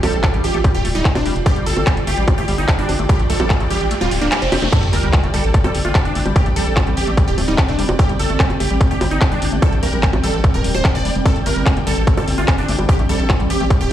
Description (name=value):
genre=psychedelic trance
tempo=147 BPM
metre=4/4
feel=straight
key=G minor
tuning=A4 = 444 Hz
part: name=supersaw stab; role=melody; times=0.0-13.9 s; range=C4 to D5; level=-23 LUFS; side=right 1 dB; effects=phaser, sidechain pumping, tape echo
part: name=swarming drone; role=sustained chords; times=0.0-13.9 s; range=C4 to F4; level=-27 LUFS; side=right 2 dB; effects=built-in reverb, sidechain pumping
part: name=liquid acid bass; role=riff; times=0.0-13.8 s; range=F3 to G4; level=-27 LUFS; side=moving between left 3 dB and right 3 dB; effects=chorus, auto-pan, sidechain pumping, tape echo
part: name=round analog bass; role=bass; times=0.0-13.9 s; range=D1 to Bb1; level=-20 LUFS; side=equal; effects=none
part: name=techno drum kit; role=drums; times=0.0-13.9 s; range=bongos, crash cymbal, handclaps, hi-hat, snare drum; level=-23 LUFS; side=equal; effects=none
part: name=dark chamber string section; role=texture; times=0.0-13.9 s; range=G4 to G5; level=-29 LUFS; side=equal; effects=sidechain pumping
part: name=electronic kick drum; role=drums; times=0.2-13.8 s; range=none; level=-15 LUFS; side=equal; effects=distortion, overdrive
part: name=riser and sub drop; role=sound effects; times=2.8-6.4 s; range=none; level=-25 LUFS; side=equal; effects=none
room=digital ambience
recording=played on a big sound system in a bare room, large studio reverb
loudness=-14 LUFS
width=side -11 dB against mid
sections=0.0-4.7 A section; 4.7-13.9 B section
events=riser 2.8-4.7; kick drops out 3.9-4.7; drum fill 4.5; drop 4.7-13.9; impact 4.7-6.4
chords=0.0 G5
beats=0.23 0.64 1.05 | 1.46 1.87 2.28 2.68 | 3.09 3.50 3.91 4.32 | 4.72 5.13 5.54 5.95 | 6.36 6.77 7.17 7.58 | 7.99 8.40 8.81 9.21 | 9.62 10.03 10.44 10.85 | 11.26 11.66 12.07 12.48 | 12.89 13.30 13.71